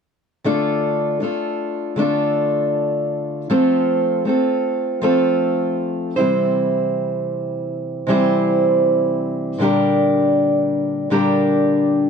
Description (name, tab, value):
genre	pop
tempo	79 BPM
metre	4/4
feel	straight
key	D minor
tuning	A4 = 437 Hz
part	fingerpicked steel-string acoustic guitar	accompaniment	0.4-12.1 s	Bb2 to C5	-16 LUFS	equal	none
room	light reverb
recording	dark, warm production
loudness	-16 LUFS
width	side -6 dB against mid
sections	0.5-12.1 A section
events	none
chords	0.5 Dm; 3.5 F; 6.2 C; 9.6 Gm/Bb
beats	| 0.46 1.22 1.98 2.74 | 3.50 4.26 5.02 5.79 | 6.55 7.31 8.07 8.83 | 9.59 10.35 11.11 11.87